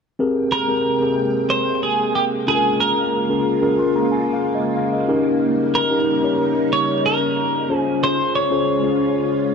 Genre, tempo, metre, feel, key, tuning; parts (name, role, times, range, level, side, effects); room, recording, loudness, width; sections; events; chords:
pop; 92 BPM; 4/4; straight; Ab major; A4 = 445 Hz
mellow tine electric piano; accompaniment; 0.2-9.5 s; C4 to C6; -19 LUFS; left 2 dB; slow stereo tremolo
soft string machine; sustained chords; 0.5-9.5 s; C3 to G5; -24 LUFS; right 2 dB; phaser, ensemble chorus
twelve-string electric guitar; melody; 0.5-9.5 s; G4 to Db5; -20 LUFS; right 1 dB
moderate plate reverb, RT60 3.5 s; -16 LUFS; side -6 dB against mid
0.2-9.5 A section
tine electric piano fill 3.5-5.4
0.2 Abmaj9; 2.5 Bbm7; 5.1 Eb7; 7.7 Dbmaj7